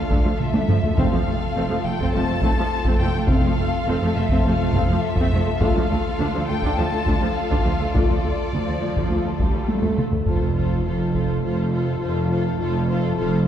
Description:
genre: cinematic, epic orchestral film score.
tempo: 103 BPM.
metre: 4/4.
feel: straight.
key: F major.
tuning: A4 = 438 Hz.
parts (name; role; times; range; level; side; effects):
rich symphonic violin section; melody; 0.0-13.5 s; C5 to A5; -29 LUFS; left 4 dB; none.
warm symphonic violin section; second line; 0.0-13.4 s; F4 to A4; -30 LUFS; left 3 dB; none.
rich symphonic viola section; accompaniment; 0.0-13.5 s; F3 to F4; -27 LUFS; right 1 dB; none.
clear symphonic double bass section; bass; 0.1-13.5 s; F1 to D2; -27 LUFS; right 3 dB; none.
rich symphonic cello section; bass; 0.1-13.5 s; D2 to F2; -26 LUFS; right 2 dB; none.
taiko ensemble; drums; 0.1-11.4 s; none; -23 LUFS; equal; none.
mellow French horn section; sustained chords; 1.0-13.5 s; A3 to F4; -30 LUFS; left 5 dB; none.
timpani; percussion; 1.0-1.8, 10.3-11.1 s; F2; -31 LUFS; right 1 dB; none.
sub drop; sound effects; 10.5-12.6 s; none; -31 LUFS; equal; none.
room: wet scoring stage reverb, RT60 1.9 s.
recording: heard from further back in the room.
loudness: -19 LUFS.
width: side -10 dB against mid.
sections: 0.0-10.3 A section; 10.3-13.5 B section.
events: drum fill 0.4-1.0, 9.7-10.3; impact 10.3-12.6.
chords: 0.0 Dm; 1.0 F; 5.6 Dm; 10.3 F.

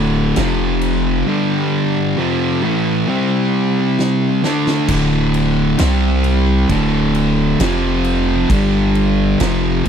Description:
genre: stoner and doom metal.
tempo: 66 BPM.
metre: 4/4.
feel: straight.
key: D minor from 4.9 s.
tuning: A4 = 441 Hz.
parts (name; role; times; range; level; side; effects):
distorted electric guitar; riff; 0.0-9.9 s; D2 to D4; -21 LUFS; equal; overdrive.
thick fuzz guitar; riff; 0.0-9.9 s; D2 to D4; -19 LUFS; left 10 dB; distortion.
thick fuzz guitar; riff; 0.0-9.9 s; D2 to D4; -18 LUFS; right 9 dB; distortion.
punchy sub bass; bass; 0.0-9.9 s; D1 to C2; -19 LUFS; equal; overdrive.
oversized low-tuned drum kit; drums; 0.4-9.9 s; crash cymbal, kick drum, snare drum; -25 LUFS; equal; none.
room: little or no reverb.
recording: dry, close 1970s-style studio recording.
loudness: -14 LUFS.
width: side -8 dB against mid.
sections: 0.0-4.9 A section; 4.9-9.9 B section.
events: drum fill 4.0-4.9.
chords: 0.4 F5; 1.3 G5; 2.2 Fmaj7; 3.1 C5; 4.4 D5; 5.8 C5; 6.7 D5; 7.6 F5; 8.5 G5.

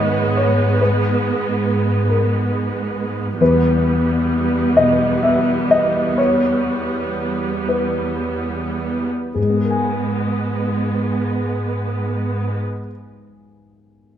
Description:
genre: cinematic, emotional film score for orchestra.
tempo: 34-46 BPM (dotted quarters).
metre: 6/8.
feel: rubato.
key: G# minor.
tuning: A4 = 440 Hz.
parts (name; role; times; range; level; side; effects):
dark concert grand piano; accompaniment; 0.0-14.2 s; E2 to G#5; -18 LUFS; left 2 dB; none.
rich studio viola section; accompaniment; 0.0-12.6 s; G3 to B3; -22 LUFS; right 4 dB; none.
warm studio cello section; bass; 0.0-12.6 s; E2 to G#2; -22 LUFS; equal; none.
room: light reverb.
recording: close, detailed microphones.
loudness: -16 LUFS.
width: side -10 dB against mid.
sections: 0.0-9.4 A section; 9.4-12.7 B section.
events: slowing down 2.1-9.4.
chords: 0.0 G#madd9; 3.4 Em; 9.4 G#madd9.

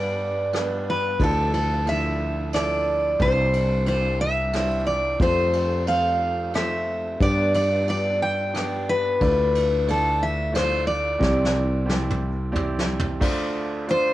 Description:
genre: acoustic folk-pop ballad.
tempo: 90 BPM.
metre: 3/4.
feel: straight.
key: D dorian.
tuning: A4 = 439 Hz.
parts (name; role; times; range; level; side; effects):
picked steel-string acoustic guitar; melody; 0.0-14.1 s; A4 to G5; -23 LUFS; equal; cassette tape.
bright grand piano; accompaniment; 0.0-14.1 s; F1 to G5; -29 LUFS; right 2 dB; cassette tape.
sustaining fretless electric bass; bass; 0.0-13.2 s; C2 to G2; -26 LUFS; equal; none.
soft brush drum kit; drums; 0.5-14.0 s; crash cymbal, hi-hat, kick drum, ride cymbal, rim click, snare drum, toms; -29 LUFS; equal; cassette tape.
room: light reverb.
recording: home recording on cassette.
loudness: -20 LUFS.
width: side -15 dB against mid.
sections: 0.0-13.2 A section.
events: drum fill 11.2-13.2.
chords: 0.0 G; 1.2 Dmadd9; 3.2 Cadd9; 5.2 F; 7.2 G; 9.2 Dmadd9; 11.2 Cadd9; 13.2 Dm7.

